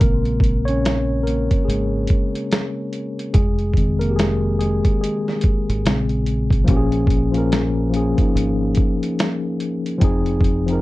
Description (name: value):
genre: lo-fi hip hop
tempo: 72 BPM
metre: 4/4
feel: swing 59% on 16ths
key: Bb minor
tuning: A4 = 438 Hz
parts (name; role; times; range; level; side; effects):
- mellow tine electric piano; accompaniment; 0.0-10.8 s; Db3 to Db5; -20 LUFS; left 2 dB; medium stereo tremolo, low-pass filter
- deep dub fingered electric bass; bass; 0.0-10.8 s; F1 to Bb1; -22 LUFS; equal; none
- lo-fi sampler-style drum kit; drums; 0.0-10.8 s; hi-hat, kick drum, snare drum; -18 LUFS; equal; vintage 12-bit sampler grit
room: light reverb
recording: dark, warm production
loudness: -17 LUFS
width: side -18 dB against mid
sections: 0.0-6.7 A section; 6.7-10.8 B section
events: tine electric piano solo 0.0-6.7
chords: 0.0 Bbm7; 3.3 Fm7; 5.8 Bbm9; 6.7 Bbm7; 10.0 Fm7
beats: | 0.01 0.85 1.68 2.52 | 3.35 4.18 5.01 5.85 | 6.68 7.51 8.35 9.18 | 10.02